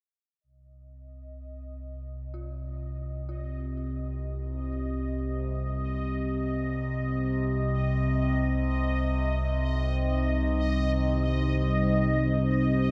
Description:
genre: dark ambient drone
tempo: free time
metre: none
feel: none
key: C minor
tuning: A4 = 439 Hz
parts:
  - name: analog drone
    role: drone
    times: 1.0-12.9 s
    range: C2 to C3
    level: -30 LUFS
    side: equal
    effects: chorus
  - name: bubbling stepped-filter texture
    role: texture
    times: 1.3-12.9 s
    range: Eb5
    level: -37 LUFS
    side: equal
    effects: chorus, built-in reverb, shimmer reverb
  - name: dark detuned synth bell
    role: arpeggios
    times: 2.3-12.9 s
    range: F4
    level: -56 LUFS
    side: equal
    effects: chorus, delay, shimmer reverb
  - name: deep dark ambient pad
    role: sustained chords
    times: 9.9-12.9 s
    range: G3 to Eb5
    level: -34 LUFS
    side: equal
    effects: chorus, built-in reverb, shimmer reverb
room: wet huge ambient reverb, RT60 7.8 s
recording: none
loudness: -28 LUFS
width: mono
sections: 0.4-12.9 A section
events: fade-in on synth texture 0.4-12.9; fade-in on synth bell 0.4-12.9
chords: 0.4 Cm

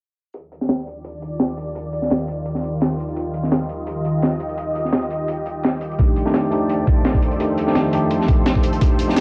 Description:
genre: liquid drum and bass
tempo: 170 BPM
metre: 4/4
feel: straight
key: Eb lydian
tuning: A4 = 440 Hz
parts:
  - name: lush unison pad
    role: sustained chords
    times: 0.9-9.2 s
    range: Eb3 to Eb6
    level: -26 LUFS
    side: equal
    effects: chorus, phaser
  - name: crunchy breakbeat drum kit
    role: drums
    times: 0.3-9.2 s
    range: hi-hat, snare drum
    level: -24 LUFS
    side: equal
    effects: high-pass filter on hats, small room ambience, high-pass filter on snare, high-pass filter on room
  - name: electronic hi-hat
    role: drums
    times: 0.3-9.2 s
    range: none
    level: -45 LUFS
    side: equal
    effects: low-pass filter on hats, small room ambience
  - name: tine electric piano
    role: accompaniment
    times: 6.0-9.2 s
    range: A3 to G4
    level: -23 LUFS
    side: equal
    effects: digital delay
  - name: electronic kick drum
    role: drums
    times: 6.0-8.9 s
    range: none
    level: -19 LUFS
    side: equal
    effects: small room ambience
  - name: riser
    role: sound effects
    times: 8.8-9.2 s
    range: none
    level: barely audible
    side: none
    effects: none
room: light reverb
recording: low-pass filter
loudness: -20 LUFS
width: mono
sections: 0.3-9.2 A section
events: filter sweep on drum 0.3-9.2; filter sweep on analog synth pad 0.3-9.2; filter sweep 0.3-9.2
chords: 0.3 Ebmaj7; 6.0 F13

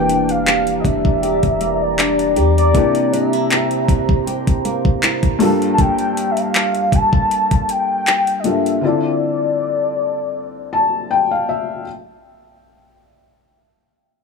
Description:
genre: contemporary R&B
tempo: 79 BPM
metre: 4/4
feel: swing 54% on 16ths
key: D minor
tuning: A4 = 440 Hz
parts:
  - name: warm velvety synth lead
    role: melody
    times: 0.0-11.5 s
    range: D5 to A5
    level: -19 LUFS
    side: left 2 dB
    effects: chorus, digital delay
  - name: felt-muted upright piano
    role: accompaniment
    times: 0.0-11.9 s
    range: G2 to A5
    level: -20 LUFS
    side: left 4 dB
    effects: none
  - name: deep dark ambient pad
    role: sustained chords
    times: 0.1-5.8 s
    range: G4 to Bb5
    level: -24 LUFS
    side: equal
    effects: chorus, built-in reverb
  - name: nylon-string guitar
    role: arpeggios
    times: 0.0-6.4 s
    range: C3 to G4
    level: -21 LUFS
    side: right 4 dB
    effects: digital delay
  - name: clean 808-style bass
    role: bass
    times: 0.0-2.7 s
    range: E1 to E2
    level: -21 LUFS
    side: left 2 dB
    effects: none
  - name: smooth R&B drum kit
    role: drums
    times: 0.1-8.8 s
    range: handclaps, hi-hat, kick drum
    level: -17 LUFS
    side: equal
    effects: none
room: little or no reverb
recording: none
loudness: -14 LUFS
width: side -4 dB against mid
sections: 0.0-11.9 A section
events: felt piano fill 10.3-11.9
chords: 0.0 Em7b5; 2.7 C7; 5.4 Gm9; 8.8 Dm9

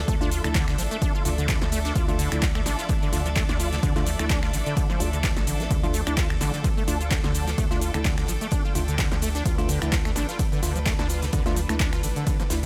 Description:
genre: acid house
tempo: 128 BPM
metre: 4/4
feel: swing 55% on 16ths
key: unclear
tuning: A4 = 440 Hz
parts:
  - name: bright studio string section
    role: sustained chords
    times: 0.0-12.7 s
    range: F3 to D5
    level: -38 LUFS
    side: equal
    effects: sidechain pumping
  - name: saturated sub bass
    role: bass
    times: 0.0-12.7 s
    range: A1 to D2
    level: -31 LUFS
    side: equal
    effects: sidechain pumping
  - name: bright chamber string section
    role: texture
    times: 0.0-12.7 s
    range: D4 to G5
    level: -39 LUFS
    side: equal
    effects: sidechain pumping
  - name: acid bass, saw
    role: riff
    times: 0.1-12.7 s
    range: D3 to F4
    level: -33 LUFS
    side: equal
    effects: ensemble chorus, vintage 12-bit sampler grit, sidechain pumping, tape echo
  - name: electronic kick drum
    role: drums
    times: 0.1-12.4 s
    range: none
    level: -28 LUFS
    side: equal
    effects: overdrive
  - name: modern studio drum kit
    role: drums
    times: 0.1-12.6 s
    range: hi-hat, snare drum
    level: -43 LUFS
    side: equal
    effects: none
  - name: punchy analog drum machine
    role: drums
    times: 0.1-12.7 s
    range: finger snaps, handclaps, hi-hat, ride cymbal, shaker, snare drum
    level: -34 LUFS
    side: equal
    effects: overdrive
  - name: bell-like tine electric piano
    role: stabs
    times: 0.2-12.6 s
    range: A3 to F4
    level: -36 LUFS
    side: equal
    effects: tape echo
room: small room reverb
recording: none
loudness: -24 LUFS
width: mono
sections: 0.0-12.7 A section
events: none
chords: 0.0 Dm

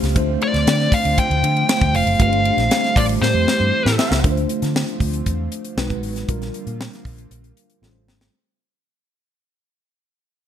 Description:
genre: polished 1980s jazz-funk pop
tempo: 117 BPM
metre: 4/4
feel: straight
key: D minor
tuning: A4 = 438 Hz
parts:
  - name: mellow tine electric piano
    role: accompaniment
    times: 0.0-8.4 s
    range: G3 to B#4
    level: -24 LUFS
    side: left 1 dB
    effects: medium stereo tremolo, wide subtle chorus
  - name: chorused pulse-width pad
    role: sustained chords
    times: 0.0-8.3 s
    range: C#3 to B#4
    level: -29 LUFS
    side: right 4 dB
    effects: none
  - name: vintage muted fingered electric bass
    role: bass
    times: 0.0-8.3 s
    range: F1 to D3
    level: -21 LUFS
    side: equal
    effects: none
  - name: tight funk drum kit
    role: drums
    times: 0.0-8.3 s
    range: hi-hat, kick drum, ride cymbal, snare drum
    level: -22 LUFS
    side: equal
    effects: none
  - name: nasal lead guitar with a parked wah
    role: melody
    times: 0.4-3.9 s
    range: C5 to G5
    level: -19 LUFS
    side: left 1 dB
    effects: overdrive
  - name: dark horn section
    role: second line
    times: 3.0-4.2 s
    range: A3 to E5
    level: -26 LUFS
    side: right 1 dB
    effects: none
room: moderate plate reverb, RT60 1.1 s, studio ambience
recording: bright 1980s-style digital production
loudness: -16 LUFS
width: side -10 dB against mid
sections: 0.0-4.2 A section; 4.2-8.3 B section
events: band accent 2.2-4.2; drum fill 3.2-4.2, 7.8-8.3; fade-out 4.2-8.3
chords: 0.2 Dm7; 2.2 G9sus4; 3.2 Am7; 4.2 Dm7; 5.8 B6; 6.3 Bb6; 7.8 A7alt

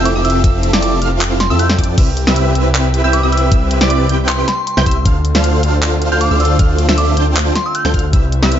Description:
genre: future bass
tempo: 156 BPM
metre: 4/4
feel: half-time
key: unclear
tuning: A4 = 442 Hz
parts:
  - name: glassy synth bell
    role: melody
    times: 0.0-8.0 s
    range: C6 to G6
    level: -21 LUFS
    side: right 1 dB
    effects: chorus, sidechain pumping, dub echo
  - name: dark studio string section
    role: sustained chords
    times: 0.0-8.6 s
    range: C3 to E5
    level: -28 LUFS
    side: equal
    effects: none
  - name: wide unison pluck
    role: arpeggios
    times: 0.0-8.6 s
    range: D6 to G6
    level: -26 LUFS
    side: right 1 dB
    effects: sidechain pumping, dub echo
  - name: dense compressed supersaw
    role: riff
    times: 0.0-8.6 s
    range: C4 to G5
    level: -18 LUFS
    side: right 1 dB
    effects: sidechain pumping
  - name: wide detuned saw bass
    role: bass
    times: 0.0-8.6 s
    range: F1 to F2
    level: -15 LUFS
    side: equal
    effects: chorus, sidechain pumping
  - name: pop drum kit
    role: drums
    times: 0.1-8.6 s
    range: crash cymbal, handclaps, hi-hat, snare drum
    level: -18 LUFS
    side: equal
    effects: none
  - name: electronic kick drum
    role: drums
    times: 0.4-8.2 s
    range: none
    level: -13 LUFS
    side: equal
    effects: none
room: light reverb, digital ambience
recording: nothing above 7.6 kHz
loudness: -11 LUFS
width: side -10 dB against mid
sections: 0.0-8.6 A section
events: none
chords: 0.0 Fmaj7; 2.0 Cmaj7; 5.1 Dm7

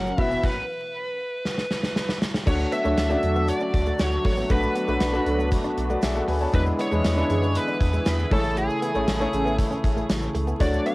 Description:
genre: 1980s-style pop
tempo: 118 BPM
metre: 4/4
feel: straight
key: unclear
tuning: A4 = 441 Hz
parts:
  - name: bluesy overdriven lead guitar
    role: melody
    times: 0.0-10.9 s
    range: G#4 to F#5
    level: -29 LUFS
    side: equal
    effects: distortion, cassette tape, tape echo
  - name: warm concert grand piano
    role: accompaniment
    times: 0.0-10.9 s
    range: G#3 to A5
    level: -26 LUFS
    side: left 1 dB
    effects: none
  - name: brassy analog pad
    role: sustained chords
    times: 0.0-10.9 s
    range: A#2 to C#5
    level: -31 LUFS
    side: equal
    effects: chorus
  - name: mellow synth brass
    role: stabs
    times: 0.0-9.6 s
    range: E3 to A#4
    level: -33 LUFS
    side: right 1 dB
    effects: chorus, tape echo
  - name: round analog bass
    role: bass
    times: 0.0-10.8 s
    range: E1 to F#2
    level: -27 LUFS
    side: equal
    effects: none
  - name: direct-recorded clean electric guitar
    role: riff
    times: 0.1-10.9 s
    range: G#3 to D4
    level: -34 LUFS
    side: right 1 dB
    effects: lush chorus, tape echo
  - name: tube shaker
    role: percussion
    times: 0.1-10.8 s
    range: none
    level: -54 LUFS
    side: right 5 dB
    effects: none
  - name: gated 80s drum kit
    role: drums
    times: 0.2-10.9 s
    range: crash cymbal, hi-hat, kick drum, snare drum, tambourine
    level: -25 LUFS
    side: equal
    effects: cassette tape
room: moderate booth ambience, RT60 0.2 s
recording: home recording on cassette, vinyl crackle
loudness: -21 LUFS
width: side -21 dB against mid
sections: 0.0-2.5 A section; 2.5-10.9 B section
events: stop 0.4-2.5; drum fill 1.5-2.5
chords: 0.2 Esus2; 2.5 Dmaj7; 4.5 Bm7; 6.5 E7; 8.3 Amaj7

